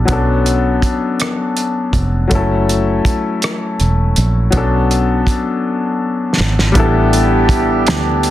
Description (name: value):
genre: slow six-eight R&B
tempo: 54 BPM (dotted quarters)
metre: 6/8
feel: straight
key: B minor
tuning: A4 = 440 Hz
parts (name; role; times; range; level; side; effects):
- clear grand piano; accompaniment; 0.0-8.3 s; F#3 to A4; -16 LUFS; left 3 dB; plate reverb
- fingered electric bass; bass; 0.0-8.3 s; E1 to D2; -15 LUFS; right 1 dB; none
- cloth-damped thuddy drum kit; drums; 0.1-8.3 s; hi-hat, kick drum, rim click, snare drum; -17 LUFS; right 1 dB; none
- mellow horn section; stabs; 6.7-8.3 s; E3 to G4; -18 LUFS; right 10 dB; plate reverb
room: little or no reverb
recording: dense, heavily limited modern master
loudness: -12 LUFS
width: side -13 dB against mid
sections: 0.0-6.8 A section; 6.8-8.3 B section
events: drum fill 5.6-6.8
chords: 0.1 Bm9; 2.3 F#m7; 4.5 Bm9; 6.8 A9sus4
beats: | 0.09 1.20 | 2.31 3.42 | 4.53 5.64 | 6.75 7.86